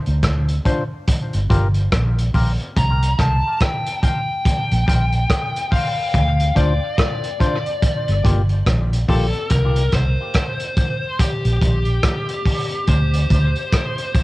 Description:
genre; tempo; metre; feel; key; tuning
dub reggae; 71 BPM; 4/4; swing 59% on 16ths; C dorian; A4 = 440 Hz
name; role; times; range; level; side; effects
vintage muted fingered electric bass; bass; 0.1-13.5 s; G1 to D2; -17 LUFS; equal; none
crunchy breakbeat drum kit; drums; 0.1-14.2 s; hi-hat, kick drum, rim click; -20 LUFS; equal; cassette tape
percussive organ stab; stabs; 0.7-9.3 s; Bb3 to C5; -28 LUFS; left 3 dB; chorus, high-pass filter, cassette tape, tape echo, plate reverb
fuzz lead guitar; melody; 2.8-14.2 s; G4 to Bb5; -23 LUFS; left 2 dB; distortion, cassette tape, tape echo, plate reverb
room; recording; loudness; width
little or no reverb; home recording on cassette; -16 LUFS; side -19 dB against mid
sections
0.0-14.2 A section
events
break 0.0-2.8; filter sweep on synth stab 0.0-6.1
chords
0.0 Dm7; 1.1 Gm7; 2.8 Cm7; 6.1 Dm7; 7.8 Gm7; 9.5 C5; 12.9 Csus2/D

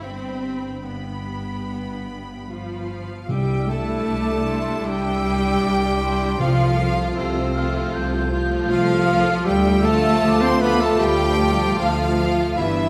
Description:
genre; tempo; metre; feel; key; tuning
cinematic, emotional film score for orchestra; 77 BPM; 4/4; rubato; C major; A4 = 440 Hz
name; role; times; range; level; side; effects
clear studio violin section; melody; 0.0-12.9 s; D4 to B5; -36 LUFS; equal; none
clear studio violin section; second line; 0.0-12.9 s; C5 to C6; -30 LUFS; equal; none
rich studio viola section; accompaniment; 0.0-12.9 s; F3 to D4; -32 LUFS; equal; none
clear studio cello section; bass; 0.0-12.9 s; G2 to C4; -27 LUFS; equal; none
rich studio double bass section; bass; 0.0-12.9 s; G1 to D2; -29 LUFS; equal; none
clear clarinet; second line; 2.5-12.9 s; C4 to C5; -28 LUFS; equal; none
bright large flute ensemble; second line; 3.3-12.9 s; A5 to G6; -33 LUFS; equal; none
dark French horn section; sustained chords; 3.3-12.9 s; A3 to F4; -29 LUFS; equal; none
timpani; percussion; 3.3-7.5 s; C3; -27 LUFS; equal; none
room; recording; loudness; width
moderate scoring stage reverb, RT60 2.0 s; none; -20 LUFS; mono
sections
0.0-3.3 A section; 3.3-12.9 B section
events
none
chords
0.0 G; 3.3 Cadd9; 6.4 F/C; 9.5 Dm

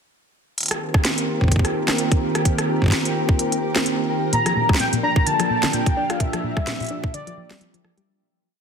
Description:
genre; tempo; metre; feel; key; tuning
IDM; 128 BPM; 4/4; swing 56% on 16ths; C minor; A4 = 441 Hz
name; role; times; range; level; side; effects
soft string machine; sustained chords; 0.7-8.0 s; Eb3 to Bb4; -24 LUFS; right 1 dB; ensemble chorus
organic electronic drum kit; drums; 0.6-8.1 s; hi-hat, rim click, snare drum; -24 LUFS; right 1 dB; tape echo
pulsing gated texture; texture; 0.6-8.1 s; F4 to G5; -32 LUFS; left 4 dB; chorus, built-in reverb
electronic kick drum; drums; 0.9-7.1 s; none; -19 LUFS; equal; none
warm velvety synth lead; melody; 4.3-7.6 s; D5 to Bb5; -23 LUFS; left 1 dB; chorus, tape echo
soft round pluck; arpeggios; 4.3-8.1 s; Bb2 to F4; -26 LUFS; left 3 dB; chorus, tape echo
room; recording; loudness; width
light reverb, digital ambience; dense, heavily limited modern master; -18 LUFS; side -6 dB against mid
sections
0.6-8.1 groove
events
fade-out 5.6-8.1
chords
0.6 Cm7; 4.3 Gm7

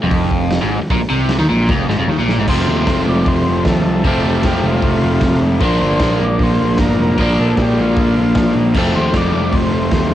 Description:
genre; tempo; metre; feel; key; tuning
garage rock duo or trio; 153 BPM; 4/4; straight; F mixolydian; A4 = 441 Hz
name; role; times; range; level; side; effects
overdriven electric guitar; riff; 0.0-10.1 s; F2 to D4; -15 LUFS; equal; none
fuzz picked electric bass; bass; 0.0-10.1 s; F1 to Eb2; -19 LUFS; equal; overdrive
raw garage drum kit; drums; 0.1-10.0 s; crash cymbal, hi-hat, kick drum, snare drum; -20 LUFS; equal; cassette tape
overdriven combo organ; melody; 2.5-10.1 s; F4 to D5; -23 LUFS; left 1 dB; cassette tape
room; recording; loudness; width
moderate studio reverb, RT60 0.6 s; home recording on cassette; -12 LUFS; side -12 dB against mid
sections
0.0-2.5 A section; 2.5-10.1 B section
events
drum fill 1.7-2.5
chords
0.0 F5; 2.5 F; 5.6 Bb; 8.8 F

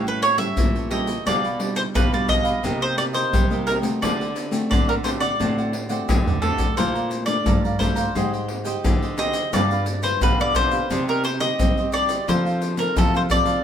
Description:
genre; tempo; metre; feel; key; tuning
samba and choro; 87 BPM; 4/4; straight; unclear; A4 = 441 Hz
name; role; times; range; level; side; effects
mandolin; melody; 0.0-13.6 s; A4 to E5; -23 LUFS; equal; none
cavaquinho; accompaniment; 0.0-13.6 s; D4 to Bb5; -30 LUFS; right 4 dB; none
nylon-string guitar; accompaniment; 0.0-13.6 s; A2 to D5; -27 LUFS; left 1 dB; none
nylon-string guitar; bass; 0.0-13.6 s; G2 to C4; -28 LUFS; equal; none
tube shaker, pandeiro, surdo and tamborim; percussion; 0.1-13.6 s; none; -24 LUFS; left 1 dB; none
room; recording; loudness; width
moderate studio reverb, RT60 0.8 s; band playing live in one room; -19 LUFS; side -9 dB against mid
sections
0.0-13.6 A section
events
drum fill 6.1-6.8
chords
0.0 A7; 1.3 G7/B; 2.6 Cm7; 4.0 D7; 6.8 Bbmaj7; 8.2 Abmaj7; 9.5 G7; 10.9 Cmadd9; 12.3 F7

